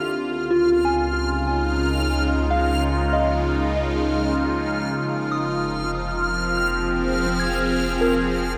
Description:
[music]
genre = ambient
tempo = 72 BPM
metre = 3/4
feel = straight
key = unclear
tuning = A4 = 439 Hz
[part]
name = evolving wavetable pad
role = sustained chords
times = 0.0-8.6 s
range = Db3 to Ab4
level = -25 LUFS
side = equal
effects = phaser, built-in reverb
[part]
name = soft synth bell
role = arpeggios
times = 0.0-8.6 s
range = C4 to Ab6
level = -28 LUFS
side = equal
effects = chorus, delay
[part]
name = round analog bass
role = bass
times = 0.0-8.6 s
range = F1 to Db2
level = -30 LUFS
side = equal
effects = none
[part]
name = overtone-sweeping drone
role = drone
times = 0.1-8.6 s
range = F3 to Bb3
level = -40 LUFS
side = equal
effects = none
[part]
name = backwards swelling texture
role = texture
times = 0.0-8.6 s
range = F6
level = -31 LUFS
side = equal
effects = built-in reverb
[sound]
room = wet lush hall reverb, RT60 2.5 s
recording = none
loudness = -22 LUFS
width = mono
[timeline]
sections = 0.0-8.6 A section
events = none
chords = 0.0 Dbadd9; 5.0 Fm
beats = | 0.05 0.87 1.70 | 2.53 3.36 4.20 | 5.04 5.87 6.71 | 7.53 8.36

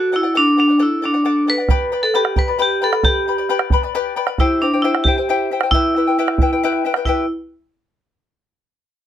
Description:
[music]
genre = andean folk, Andean ensemble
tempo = 90 BPM (dotted quarters)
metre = 6/8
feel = straight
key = E minor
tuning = A4 = 440 Hz
[part]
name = vibraphone with hard mallets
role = melody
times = 0.0-7.3 s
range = D4 to B4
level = -16 LUFS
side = right 1 dB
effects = none
[part]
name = charango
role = accompaniment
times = 0.0-7.3 s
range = E4 to B5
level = -21 LUFS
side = left 7 dB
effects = none
[part]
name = bombo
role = percussion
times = 1.7-7.3 s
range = none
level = -18 LUFS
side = right 2 dB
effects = none
[sound]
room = little or no reverb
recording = close, detailed microphones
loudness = -15 LUFS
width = side -10 dB against mid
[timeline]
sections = 0.0-7.1 A section; 7.1-8.4 B section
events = none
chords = 0.0 D; 1.7 G; 4.4 C; 5.7 Em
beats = | 0.35 1.02 | 1.70 2.37 | 3.05 3.72 | 4.39 5.06 | 5.73 6.40 | 7.06

